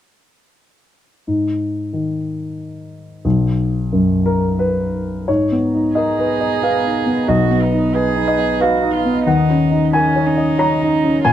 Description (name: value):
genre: neoclassical piano and strings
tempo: 90 BPM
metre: 3/4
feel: rubato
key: unclear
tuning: A4 = 441 Hz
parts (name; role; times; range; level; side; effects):
- dark grand piano; accompaniment; 1.3-11.3 s; B1 to Bb5; -16 LUFS; left 1 dB; none
- dark analog pad; sustained chords; 5.3-11.3 s; Bb3 to Bb5; -24 LUFS; right 5 dB; chorus
- warm cello; second line; 5.9-11.3 s; Db4 to Ab4; -22 LUFS; right 7 dB; none
room: little or no reverb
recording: close, detailed microphones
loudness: -15 LUFS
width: side -11 dB against mid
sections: 1.3-5.3 A section; 5.3-11.3 B section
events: none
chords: 1.3 Ab5; 3.2 B5; 5.3 Abmadd9; 7.3 B; 9.3 Ebm7